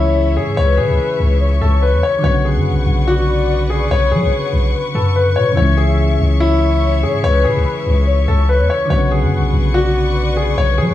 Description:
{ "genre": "hip hop", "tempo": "144 BPM", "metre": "4/4", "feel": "half-time", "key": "C# phrygian", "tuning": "A4 = 440 Hz", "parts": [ { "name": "warm concert grand piano", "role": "melody", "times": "0.0-10.9 s", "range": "E4 to C#5", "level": "-19 LUFS", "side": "left 2 dB", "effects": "none" }, { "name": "warm velvety synth lead", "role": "second line", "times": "0.0-10.9 s", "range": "B4 to F#5", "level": "-22 LUFS", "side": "left 4 dB", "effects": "chorus, tape echo" }, { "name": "soft electric-piano-like synth keys", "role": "accompaniment", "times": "0.0-10.9 s", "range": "C#3 to C#4", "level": "-21 LUFS", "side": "equal", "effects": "chorus" }, { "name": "dark studio string section", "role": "sustained chords", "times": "0.0-10.9 s", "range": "G#4 to C#6", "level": "-26 LUFS", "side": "left 4 dB", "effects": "none" }, { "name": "long sustained 808-style bass", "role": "bass", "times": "0.0-10.9 s", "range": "B1 to F#3", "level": "-15 LUFS", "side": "equal", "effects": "none" } ], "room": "small room ambience", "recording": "none", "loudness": "-13 LUFS", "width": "side -13 dB against mid", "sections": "0.0-10.9 A section", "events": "none", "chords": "0.0 C#m; 2.2 Bmadd9; 5.6 C#m; 8.9 Bmadd9" }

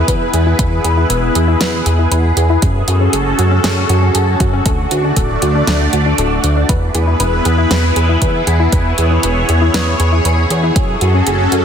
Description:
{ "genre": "synthwave", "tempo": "118 BPM", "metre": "4/4", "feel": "straight", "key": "E major", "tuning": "A4 = 440 Hz", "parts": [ { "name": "lush unison pad", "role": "sustained chords", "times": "0.0-11.6 s", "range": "A3 to D5", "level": "-16 LUFS", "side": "equal", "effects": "chorus, phaser, sidechain pumping" }, { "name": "soft round pluck", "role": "arpeggios", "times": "0.0-11.6 s", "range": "C#4 to B4", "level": "-21 LUFS", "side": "left 3 dB", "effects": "chorus, digital delay" }, { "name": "chorused synth bass", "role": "bass", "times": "0.0-11.6 s", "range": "D1 to F#2", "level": "-14 LUFS", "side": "equal", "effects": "none" }, { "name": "electronic kick drum", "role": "drums", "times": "0.1-10.9 s", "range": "none", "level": "-16 LUFS", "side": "equal", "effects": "overdrive" }, { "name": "pop drum kit", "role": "drums", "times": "0.1-11.6 s", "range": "hi-hat, snare drum", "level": "-20 LUFS", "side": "right 1 dB", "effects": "overdrive" } ], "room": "light reverb, digital ambience", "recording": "dense, heavily limited modern master", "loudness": "-11 LUFS", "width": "side -8 dB against mid", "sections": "0.0-11.6 A section", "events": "none", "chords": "0.0 E; 2.6 F#madd9; 4.7 D; 6.7 E; 10.8 F#madd9" }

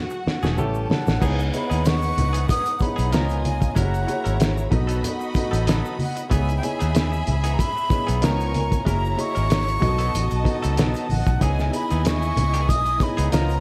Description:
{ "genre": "lush 1970s-style soul", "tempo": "94 BPM", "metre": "4/4", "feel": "swing 54% on 16ths", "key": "C# minor", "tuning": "A4 = 440 Hz", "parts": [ { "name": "warm studio violin section", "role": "second line", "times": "0.0-13.6 s", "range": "D#4 to C#6", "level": "-33 LUFS", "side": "equal", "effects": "none" }, { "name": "warm baby grand piano", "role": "accompaniment", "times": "0.0-13.6 s", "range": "F#3 to D#5", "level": "-32 LUFS", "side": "equal", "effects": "none" }, { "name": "direct-recorded clean electric guitar", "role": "riff", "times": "0.1-13.6 s", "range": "E3 to A#4", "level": "-36 LUFS", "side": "equal", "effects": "none" }, { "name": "egg shaker", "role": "percussion", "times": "0.1-13.6 s", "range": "none", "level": "-50 LUFS", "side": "equal", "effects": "none" }, { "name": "vintage muted fingered electric bass", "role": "bass", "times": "0.3-13.6 s", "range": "E1 to D#2", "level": "-25 LUFS", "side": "equal", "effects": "none" }, { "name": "cloth-damped thuddy drum kit", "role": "drums", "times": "0.3-13.6 s", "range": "crash cymbal, hi-hat, kick drum, snare drum", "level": "-27 LUFS", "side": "equal", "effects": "none" }, { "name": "congas", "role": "percussion", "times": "0.3-13.5 s", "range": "none", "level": "-33 LUFS", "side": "equal", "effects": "none" }, { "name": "breathy jazz flute", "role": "melody", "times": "0.9-13.6 s", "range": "F#5 to D#6", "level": "-30 LUFS", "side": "equal", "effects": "none" } ], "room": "small room ambience", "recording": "dark, warm production", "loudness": "-22 LUFS", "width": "mono", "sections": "0.0-1.2 A section; 1.2-13.6 B section", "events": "drum fill 0.0-1.2", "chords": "0.0 F#m9; 0.6 A7; 1.2 C#m9; 3.1 C#13; 3.8 F#9; 4.7 B7; 6.3 C#m9; 8.2 C#13; 8.9 F#9; 9.8 B7; 11.4 C#m9" }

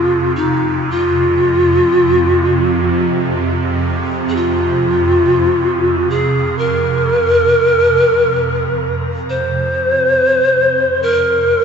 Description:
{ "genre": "world meditative, free-time meditation music", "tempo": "free time", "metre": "none", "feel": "none", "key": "F minor pentatonic", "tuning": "A4 = 440 Hz", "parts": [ { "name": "pan flute", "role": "melody", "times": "0.0-11.6 s", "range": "Eb4 to C5", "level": "-13 LUFS", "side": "equal", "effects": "shimmer reverb, analog delay" }, { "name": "swarming drone", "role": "drone", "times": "0.0-11.6 s", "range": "F2 to C3", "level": "-18 LUFS", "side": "right 2 dB", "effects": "built-in reverb, lush chorus" }, { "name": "quartz singing bowl", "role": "texture", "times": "0.0-1.8 s", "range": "none", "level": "barely audible", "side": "none", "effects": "none" } ], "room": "wet plate reverb, RT60 2.8 s", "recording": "dreamy mix soaked in reverb, nothing above 7.8 kHz", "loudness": "-12 LUFS", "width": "side -6 dB against mid", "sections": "0.0-11.6 A section", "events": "none", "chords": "none" }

